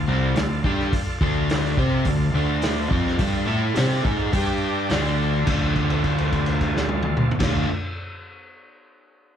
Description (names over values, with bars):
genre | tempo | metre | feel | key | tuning
blues rock power trio and southern rock | 106 BPM | 4/4 | straight | D minor | A4 = 441 Hz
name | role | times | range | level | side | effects
overdriven tonewheel organ | sustained chords | 0.0-7.7 s | D4 to G5 | -31 LUFS | right 2 dB | slow rotary speaker
overdriven semi-hollow guitar | riff | 0.0-7.7 s | C3 to C5 | -24 LUFS | equal | none
fuzz fingered electric bass | bass | 0.0-7.6 s | C2 to C3 | -24 LUFS | equal | overdrive
vintage drum kit | drums | 0.4-7.5 s | crash cymbal, hi-hat, kick drum, snare drum, toms | -26 LUFS | equal | none
room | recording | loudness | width
light reverb | live gig heard through the venue's PA, club reverb | -19 LUFS | side -9 dB against mid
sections
0.0-5.5 A section; 5.5-7.8 B section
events
held note 5.5-7.4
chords
0.0 Dm; 4.3 G5; 4.9 Dm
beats
0.36 | 0.93 1.50 2.06 2.63 | 3.20 3.77 4.34 4.91 | 5.48 6.05 6.62 7.18